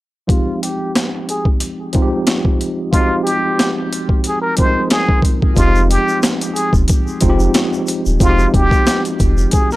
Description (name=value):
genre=hip hop, boom-bap hip-hop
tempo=91 BPM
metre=4/4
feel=swing 56% on 16ths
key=F minor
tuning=A4 = 438 Hz
part: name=trumpet with plunger mute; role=melody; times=0.3-9.8 s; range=F4 to C5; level=-19 LUFS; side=equal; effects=low-pass filter, tape echo
part: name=tine electric piano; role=accompaniment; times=0.3-9.8 s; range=F3 to Bb4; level=-19 LUFS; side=equal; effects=medium stereo tremolo, low-pass filter
part: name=boom bap sampler-style drum kit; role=drums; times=0.3-9.8 s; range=hi-hat, kick drum, snare drum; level=-15 LUFS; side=equal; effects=overdrive
part: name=saturated sub bass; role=bass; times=5.6-9.5 s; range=Eb1 to F1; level=-16 LUFS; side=equal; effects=transformer saturation
part: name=tube shaker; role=percussion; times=5.6-9.8 s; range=none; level=-32 LUFS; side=left 2 dB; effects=none
room=little or no reverb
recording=dry, gritty hardware recording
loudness=-13 LUFS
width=side -18 dB against mid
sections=0.3-5.6 A section; 5.6-9.8 B section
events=filter sweep 0.3-5.6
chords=0.3 Fm7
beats=| 0.29 0.95 1.61 2.27 | 2.93 3.59 4.25 4.91 | 5.57 6.23 6.88 7.54 | 8.20 8.86 9.52